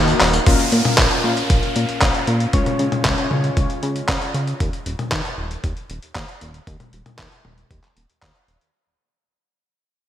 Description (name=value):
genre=italo disco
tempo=116 BPM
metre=4/4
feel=straight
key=unclear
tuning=A4 = 441 Hz
part: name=chorused polysynth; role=stabs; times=0.0-4.6 s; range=Bb2 to Gb5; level=-24 LUFS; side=left 3 dB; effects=digital delay, shimmer reverb
part: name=chorused synth bass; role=bass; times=0.0-8.6 s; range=Eb1 to Db3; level=-22 LUFS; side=equal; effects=tube saturation, digital delay
part: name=dusty soul sampler-style drum kit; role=drums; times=0.1-8.7 s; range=handclaps, hi-hat, tambourine, toms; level=-21 LUFS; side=equal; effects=overdrive, gated reverb
part: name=electronic kick drum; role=drums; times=0.5-8.3 s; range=none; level=-20 LUFS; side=equal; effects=overdrive
part: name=downlifter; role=sound effects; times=0.5-4.6 s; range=none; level=-26 LUFS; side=equal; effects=none
room=wet lush hall reverb, RT60 2.4 s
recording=bright 1980s-style digital production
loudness=-17 LUFS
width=side -11 dB against mid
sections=0.5-8.7 A section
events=drum fill 0.2; fade-out 0.5-8.7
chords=0.5 Bbm; 2.5 Db; 4.6 N.C.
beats=| 0.47 0.98 1.50 2.02 | 2.53 3.05 3.57 4.09 | 4.60 5.12 5.64 6.16 | 6.67 7.19 7.71 8.22